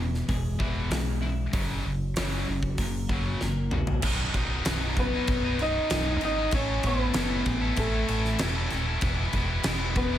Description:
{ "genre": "quiet-loud alternative rock", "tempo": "96 BPM", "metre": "4/4", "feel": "straight", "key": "B major", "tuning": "A4 = 440 Hz", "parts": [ { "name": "twelve-string electric guitar", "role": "arpeggios", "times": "0.0-4.0 s", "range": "E2 to F#4", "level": "-35 LUFS", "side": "left 4 dB", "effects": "analog chorus" }, { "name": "scooped high-gain guitar", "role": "riff", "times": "0.0-10.2 s", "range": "B1 to A4", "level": "-31 LUFS", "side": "equal", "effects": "distortion" }, { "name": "fingered electric bass", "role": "bass", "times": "0.0-10.2 s", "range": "B0 to B1", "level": "-30 LUFS", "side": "equal", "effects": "none" }, { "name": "huge arena drum kit", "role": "drums", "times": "0.1-10.1 s", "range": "crash cymbal, hi-hat, kick drum, snare drum, toms", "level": "-30 LUFS", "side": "equal", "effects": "none" }, { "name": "electric guitar through a small old amp", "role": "melody", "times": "5.0-10.2 s", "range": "A3 to D#5", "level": "-28 LUFS", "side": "equal", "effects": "none" } ], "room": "light reverb", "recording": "none", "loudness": "-24 LUFS", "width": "side -11 dB against mid", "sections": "0.0-4.0 A section; 4.0-10.2 B section", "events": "drum fill 3.4-4.0", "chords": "0.0 E; 1.5 F#; 4.0 B; 6.5 A; 9.0 E", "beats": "0.30 0.92 | 1.54 2.17 2.79 3.42 | 4.04 4.66 5.29 5.91 | 6.54 7.16 7.78 8.41 | 9.03 9.65" }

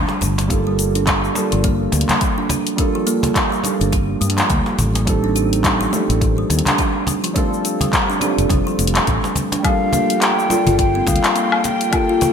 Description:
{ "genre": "organic downtempo", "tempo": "105 BPM", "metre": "4/4", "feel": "swing 59% on 16ths", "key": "G minor", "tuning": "A4 = 436 Hz", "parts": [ { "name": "kalimba", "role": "arpeggios", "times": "0.0-12.3 s", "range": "D3 to G4", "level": "-22 LUFS", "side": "left 1 dB", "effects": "digital delay" }, { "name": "fretless electric bass", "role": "bass", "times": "0.0-11.2 s", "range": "F1 to G2", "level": "-20 LUFS", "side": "equal", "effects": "none" }, { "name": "cajon", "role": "percussion", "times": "0.1-12.3 s", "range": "none", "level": "-26 LUFS", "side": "equal", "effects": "none" }, { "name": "deep house drum kit", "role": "drums", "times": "0.2-12.3 s", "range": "handclaps, hi-hat, shaker, woodblock", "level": "-20 LUFS", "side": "left 2 dB", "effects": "gated reverb" }, { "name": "felt-muted upright piano", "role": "accompaniment", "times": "0.5-12.3 s", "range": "Eb3 to A4", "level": "-22 LUFS", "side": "right 3 dB", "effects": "lush chorus, sidechain pumping, digital delay" }, { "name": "electronic kick drum", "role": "drums", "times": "0.5-12.1 s", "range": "none", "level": "-21 LUFS", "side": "equal", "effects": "none" }, { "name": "hollow bansuri", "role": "melody", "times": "9.6-12.3 s", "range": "F5 to G5", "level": "-22 LUFS", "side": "left 1 dB", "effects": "ping-pong delay" }, { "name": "rich chamber string section", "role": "sustained chords", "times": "9.6-12.3 s", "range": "G3 to G5", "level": "-27 LUFS", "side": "left 2 dB", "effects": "vintage 12-bit sampler grit, sidechain pumping" } ], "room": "moderate lush hall reverb, RT60 2.3 s", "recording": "bright 1980s-style digital production", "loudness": "-15 LUFS", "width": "side -7 dB against mid", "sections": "0.0-9.6 A section; 9.6-12.3 B section", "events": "none", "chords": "0.0 G5; 0.5 Gm7; 5.1 Am7b5; 7.4 F6; 9.6 Gm7", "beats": "| 0.50 1.07 1.64 2.21 | 2.79 3.36 3.93 4.50 | 5.07 5.64 6.21 6.79 | 7.36 7.93 8.50 9.07 | 9.64 10.21 10.79 11.36 | 11.93" }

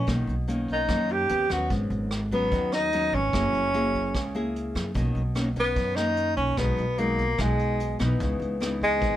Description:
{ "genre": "bossa nova", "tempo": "148 BPM", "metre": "4/4", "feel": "straight", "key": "unclear", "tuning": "A4 = 440 Hz", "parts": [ { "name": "breathy tenor saxophone", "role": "melody", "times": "0.0-9.2 s", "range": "G#3 to G4", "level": "-25 LUFS", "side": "equal", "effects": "none" }, { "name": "nylon-string guitar", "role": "accompaniment", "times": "0.0-9.2 s", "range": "F#2 to G#4", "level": "-30 LUFS", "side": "left 1 dB", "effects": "none" }, { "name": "upright bass", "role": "bass", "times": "0.0-9.2 s", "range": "F#1 to F#2", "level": "-29 LUFS", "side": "equal", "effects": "none" }, { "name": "vintage brush drum kit", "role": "drums", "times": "0.1-9.1 s", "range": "hi-hat, kick drum, rim click", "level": "-33 LUFS", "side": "right 1 dB", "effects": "none" } ], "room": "little or no reverb", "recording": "none", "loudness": "-23 LUFS", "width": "side -12 dB against mid", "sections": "0.0-9.2 A section", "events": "none", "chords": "0.1 Bmaj9; 1.3 D#7alt; 1.7 G#m7; 3.3 F#9; 5.0 Bmaj9; 6.6 Emaj9/B; 8.2 C#m9", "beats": "| 0.07 0.48 0.89 1.29 | 1.70 2.11 2.51 2.92 | 3.33 3.73 4.14 4.55 | 4.95 5.36 5.76 6.17 | 6.58 6.98 7.39 7.79 | 8.20 8.61 9.01" }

